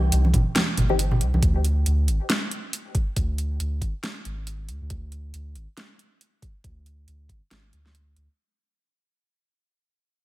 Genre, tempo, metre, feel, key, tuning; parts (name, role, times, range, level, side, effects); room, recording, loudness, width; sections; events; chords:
deep dubstep; 138 BPM; 4/4; swing 58% on 16ths, half-time; A4 = 438 Hz
soft dub sub bass; bass; 0.0-8.3 s; G1 to D2; -23 LUFS; equal; tube saturation
dubstep drum kit; drums; 0.1-8.3 s; hi-hat, snare drum; -27 LUFS; right 1 dB
congas; percussion; 0.2-1.4 s; -26 LUFS; right 2 dB
electronic kick drum; drums; 0.3-7.4 s; -24 LUFS; equal
filtered dub chord stab; stabs; 0.9-1.0 s; C4 to G4; -32 LUFS; left 4 dB; phaser, dub echo
light reverb, digital ambience; -21 LUFS; side -17 dB against mid
0.0-8.4 A section
fade-out 0.0-8.4
0.0 C5; 1.4 N.C.